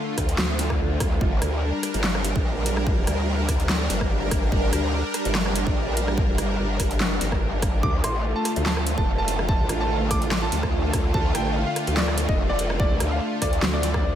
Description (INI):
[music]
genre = heavy wobble dubstep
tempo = 145 BPM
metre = 4/4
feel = swing 54% on 16ths, half-time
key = D minor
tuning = A4 = 441 Hz
[part]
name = supersaw pad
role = sustained chords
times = 0.0-14.2 s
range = D3 to Bb4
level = -27 LUFS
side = equal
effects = wide subtle chorus, sidechain pumping
[part]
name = growl bass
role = bass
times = 0.2-14.2 s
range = F1 to D2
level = -25 LUFS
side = equal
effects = distortion, chorus, overdrive
[part]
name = big-room dance drum kit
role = drums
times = 0.2-14.0 s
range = handclaps, hi-hat, rim click, snare drum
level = -28 LUFS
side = equal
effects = overdrive, studio reverb
[part]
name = electronic kick drum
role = drums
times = 0.2-14.0 s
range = none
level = -25 LUFS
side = equal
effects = overdrive, studio reverb
[part]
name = clear grand piano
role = melody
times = 7.8-14.2 s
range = D5 to D6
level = -29 LUFS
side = right 1 dB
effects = ping-pong delay
[sound]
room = moderate lush hall reverb, RT60 1.8 s, digital ambience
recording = dreamy mix soaked in reverb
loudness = -21 LUFS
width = side -10 dB against mid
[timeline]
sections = 0.0-14.2 A section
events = none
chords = 0.0 Dm; 1.2 Gm; 7.8 Dm